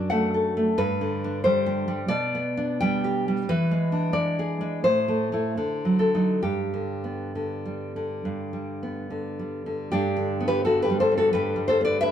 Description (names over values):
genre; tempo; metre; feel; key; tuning
romantic piece for solo classical guitar; 64-94 BPM; 4/4; rubato; G major; A4 = 441 Hz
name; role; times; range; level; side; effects
nylon-string guitar; solo; 0.0-12.1 s; F#2 to G5; -22 LUFS; equal; none
room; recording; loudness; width
wet stone room reverb, RT60 1.3 s; band playing live in one room; -23 LUFS; side -9 dB against mid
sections
0.0-9.9 A section; 9.9-12.1 A section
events
none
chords
0.0 D/F#; 0.8 G; 2.1 G/B; 3.5 E7; 4.9 Am; 5.6 D7b9; 6.4 G